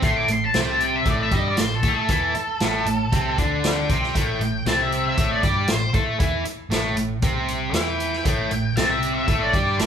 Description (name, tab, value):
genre	blues rock power trio and southern rock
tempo	117 BPM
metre	4/4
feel	straight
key	A minor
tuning	A4 = 440 Hz
part	octave-fuzz lead guitar	melody	0.0-9.9 s	A4 to D6	-24 LUFS	left 1 dB	wah, distortion
part	distorted electric guitar	riff	0.0-9.9 s	A2 to A4	-23 LUFS	equal	distortion
part	vintage muted fingered electric bass	bass	0.0-9.9 s	A1 to A2	-29 LUFS	equal	none
part	vintage drum kit	drums	0.0-9.9 s	hi-hat, kick drum, snare drum	-24 LUFS	equal	none
room	moderate large studio reverb, RT60 1.2 s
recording	band playing live in one room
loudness	-19 LUFS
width	side -8 dB against mid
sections	0.0-9.9 A section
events	none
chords	0.0 Am